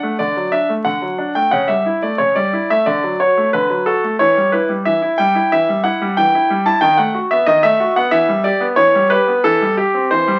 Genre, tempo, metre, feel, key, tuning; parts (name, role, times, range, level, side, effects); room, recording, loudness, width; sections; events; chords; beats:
classical-period piano sonatina; 91 BPM; 4/4; straight; A4 = 439 Hz
bright concert grand piano; solo; 0.0-10.4 s; C#3 to A5; -16 LUFS; equal
moderate studio reverb, RT60 0.8 s; very old 78 rpm record, vinyl crackle; -16 LUFS; mono
0.0-10.4 A section
0.0 D; 1.5 A7/C#; 2.8 D; 4.2 Em; 6.8 B7/D#; 8.1 Em; 9.4 C/E
0.18 0.85 | 1.52 2.18 2.85 3.51 | 4.17 4.84 5.50 6.16 | 6.82 7.48 8.13 8.79 | 9.45 10.11